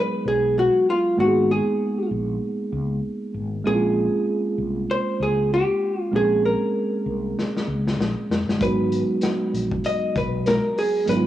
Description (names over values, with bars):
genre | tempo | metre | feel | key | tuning
hip hop, jazz-hop | 97 BPM | 4/4 | swing 57% on 16ths | unclear | A4 = 440 Hz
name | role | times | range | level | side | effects
vintage hollow-body jazz guitar | melody | 0.0-11.3 s | F4 to Eb5 | -22 LUFS | equal | cassette tape
mellow tine electric piano | accompaniment | 0.0-11.3 s | Gb3 to Ab4 | -24 LUFS | right 2 dB | medium stereo tremolo, cassette tape
mellow fretless electric bass | bass | 0.3-11.3 s | F1 to Db2 | -27 LUFS | left 2 dB | none
vintage drum kit | drums | 7.4-11.2 s | hi-hat, kick drum, snare drum | -26 LUFS | left 2 dB | cassette tape
room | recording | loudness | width
light reverb, small room reverb | home recording on cassette, small room ambience | -20 LUFS | side -13 dB against mid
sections
0.0-11.3 A section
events
drum fill 7.4-8.6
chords
0.0 Abm9; 3.7 Bbm9; 8.6 Abm7